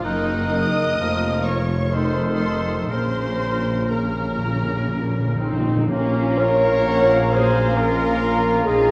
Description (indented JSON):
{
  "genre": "classical, slow romantic movement for symphony orchestra",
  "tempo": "58-67 BPM",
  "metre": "3/4",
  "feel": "rubato",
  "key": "Bb minor",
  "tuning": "A4 = 438 Hz",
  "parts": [
    { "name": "rich studio violin section", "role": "melody", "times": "0.0-8.9 s", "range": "Db5 to Eb6", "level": "-35 LUFS", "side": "equal", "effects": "none" },
    { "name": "clear oboe", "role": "second line", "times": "0.0-8.9 s", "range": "A4 to F5", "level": "-34 LUFS", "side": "equal", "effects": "none" },
    { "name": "rich studio violin section", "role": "second line", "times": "0.0-8.9 s", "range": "Db4 to Eb5", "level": "-33 LUFS", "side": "equal", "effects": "none" },
    { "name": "silver concert flute", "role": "second line", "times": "0.0-8.9 s", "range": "Bb5 to Gb6", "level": "-34 LUFS", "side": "equal", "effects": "none" },
    { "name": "warm clarinet", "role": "second line", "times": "0.0-8.9 s", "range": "Db4 to Eb5", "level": "-33 LUFS", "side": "equal", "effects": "none" },
    { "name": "warm bassoon", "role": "accompaniment", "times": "0.0-8.9 s", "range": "Db3 to Bb3", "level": "-32 LUFS", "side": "equal", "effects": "none" },
    { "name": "warm studio viola section", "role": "accompaniment", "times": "0.0-8.9 s", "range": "F3 to F4", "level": "-32 LUFS", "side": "equal", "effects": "none" },
    { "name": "mellow French horn section", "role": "sustained chords", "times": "0.0-8.9 s", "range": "A3 to Db5", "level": "-26 LUFS", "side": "equal", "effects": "none" },
    { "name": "dark tuba", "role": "bass", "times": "0.0-8.9 s", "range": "F1 to Bb1", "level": "-30 LUFS", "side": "equal", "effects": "none" },
    { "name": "rich studio double bass section", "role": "bass", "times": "0.0-8.9 s", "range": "F1 to Bb1", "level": "-31 LUFS", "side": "equal", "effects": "none" },
    { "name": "rich studio cello section", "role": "bass", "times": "0.1-8.9 s", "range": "F2 to Bb2", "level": "-31 LUFS", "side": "equal", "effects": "none" },
    { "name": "timpani", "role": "percussion", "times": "2.9-7.3 s", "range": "Bb2", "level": "-28 LUFS", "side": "equal", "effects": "none" },
    { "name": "warm trumpet section", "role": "stabs", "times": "5.4-8.9 s", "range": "Bb3 to Bb4", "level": "-28 LUFS", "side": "equal", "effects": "none" }
  ],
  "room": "wet scoring stage reverb, RT60 1.6 s",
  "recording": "worn, warbling old tape, cassette tape, warbly pitch drift",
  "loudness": "-20 LUFS",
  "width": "mono",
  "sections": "0.0-5.9 A section; 5.9-8.9 A section",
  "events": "timpani fill 2.9-5.9",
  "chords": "0.0 Ebm/Gb; 1.0 Bbm/F; 1.9 F7; 2.9 Bbm"
}